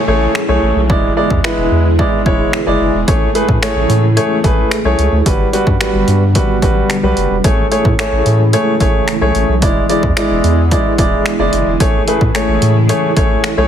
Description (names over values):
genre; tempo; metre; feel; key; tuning
dance-pop; 110 BPM; 4/4; straight; A major; A4 = 440 Hz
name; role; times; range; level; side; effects
string machine, cellos; sustained chords; 0.0-13.7 s; C#3 to G#4; -19 LUFS; equal; phaser, ensemble chorus, sidechain pumping
downlifter; sound effects; 0.0-3.1 s; none; -30 LUFS; left 1 dB; none
clear baby grand piano; accompaniment; 0.1-13.7 s; G3 to D5; -15 LUFS; equal; sidechain pumping
round analog bass; bass; 0.1-13.7 s; E1 to A2; -15 LUFS; equal; sidechain pumping
punchy analog drum machine; drums; 0.3-13.6 s; finger snaps, hi-hat, kick drum; -16 LUFS; equal; none
room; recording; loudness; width
light reverb; heavily compressed radio sound, multiband compression; -11 LUFS; side -9 dB against mid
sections
0.0-13.7 A section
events
none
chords
0.0 Amaj7; 0.9 E7; 3.1 Amaj7; 5.3 Gmaj7; 7.4 Amaj7; 9.6 E7; 11.8 Amaj7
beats
0.35 | 0.90 1.44 1.99 2.53 | 3.08 3.62 4.17 4.71 | 5.26 5.80 6.35 6.90 | 7.44 7.99 8.53 9.08 | 9.62 10.17 10.71 11.26 | 11.80 12.35 12.90 13.44